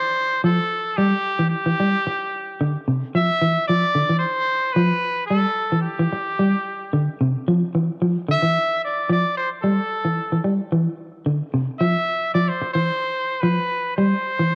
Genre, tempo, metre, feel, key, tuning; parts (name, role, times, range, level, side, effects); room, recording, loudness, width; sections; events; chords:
afrobeat; 111 BPM; 4/4; straight; D dorian; A4 = 440 Hz
clear trumpet; melody; 0.0-14.6 s; G4 to E5; -24 LUFS; equal
semi-hollow electric guitar; arpeggios; 0.4-14.5 s; C3 to G3; -23 LUFS; equal; vibrato effect, cassette tape
moderate spring reverb, RT60 2.1 s; home recording on cassette; -21 LUFS; mono
0.0-14.6 A section
0.0 Dm7 (rootless); 1.0 Cadd9; 3.1 Dm9; 5.3 Am7; 7.5 Dmadd9; 9.6 Am7; 11.8 Dm9 (rootless); 14.0 Am7 (rootless)